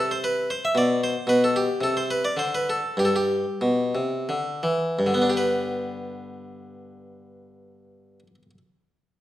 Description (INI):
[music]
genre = classical, baroque-style suite movement for harpsichord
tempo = 84-115 BPM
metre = 3/4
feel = rubato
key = G major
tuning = A4 = 440 Hz
[part]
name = harpsichord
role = solo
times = 0.0-8.6 s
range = G2 to E5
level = -22 LUFS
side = equal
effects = none
[sound]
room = moderate recital hall reverb, RT60 1.4 s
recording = none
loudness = -21 LUFS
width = side -13 dB against mid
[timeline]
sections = 0.0-5.0 A section; 5.0-9.1 B section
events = slowing down 0.5-5.0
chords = 0.0 Cmaj7sus2; 1.3 N.C.; 3.0 G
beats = 0.22 0.75 | 1.27 1.81 2.37 | 2.97 3.61 4.28 | 4.98 5.66 6.34 | 7.02 7.71 8.39